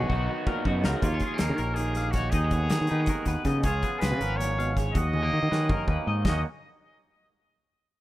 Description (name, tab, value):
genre	math rock and midwest emo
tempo	322 BPM (eighths)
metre	7/8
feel	straight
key	Eb minor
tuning	A4 = 439 Hz
part	bright trumpet	melody	0.0-6.4 s	F4 to Eb5	-32 LUFS	equal	none
part	twangy electric guitar	accompaniment	0.0-6.4 s	Eb2 to Gb4	-32 LUFS	right 4 dB	none
part	electric guitar at the edge of break-up	arpeggios	0.0-6.4 s	F#4 to F5	-35 LUFS	left 6 dB	harmonic tremolo
part	raw garage guitar	riff	0.0-1.0 s	B2 to F#4	-33 LUFS	equal	overdrive
part	growling fingered electric bass	bass	0.0-6.4 s	Ab1 to Eb3	-27 LUFS	equal	overdrive
part	loose indie drum kit	drums	0.1-6.3 s	hi-hat, kick drum, snare drum, splash cymbal, toms	-30 LUFS	equal	none
room	studio reverb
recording	rough home demo mix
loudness	-24 LUFS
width	side -15 dB against mid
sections	0.0-1.0 A section; 1.0-6.3 B section; 6.3-7.6 C section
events	drum fill 0.0-1.0, 5.1-6.3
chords	0.0 Bmaj7; 1.0 Ebsus2; 2.3 Abm7/Eb; 3.6 Db7; 5.0 Ebm7; 6.3 N.C.